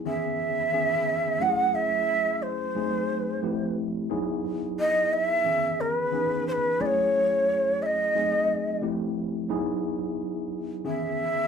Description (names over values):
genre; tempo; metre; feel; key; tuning
soul; 89 BPM; 4/4; swing 54% on 16ths; C# minor; A4 = 437 Hz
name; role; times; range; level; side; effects
mellow tine electric piano; accompaniment; 0.0-11.5 s; D#3 to G#4; -29 LUFS; equal; medium stereo tremolo
breathy hollow shakuhachi; melody; 0.1-11.5 s; B4 to F#5; -24 LUFS; equal; none
room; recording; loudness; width
wet studio ambience, RT60 0.5 s; band playing live in one room; -24 LUFS; side -6 dB against mid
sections
0.0-11.5 A section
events
none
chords
0.1 C#m7; 1.4 F#m9; 2.8 G#7b9; 3.4 Fmaj7; 4.1 Emaj7; 5.5 C#m7; 6.8 F#m9; 8.2 G#7b9; 8.8 Fmaj7; 9.5 Emaj7; 10.9 C#m7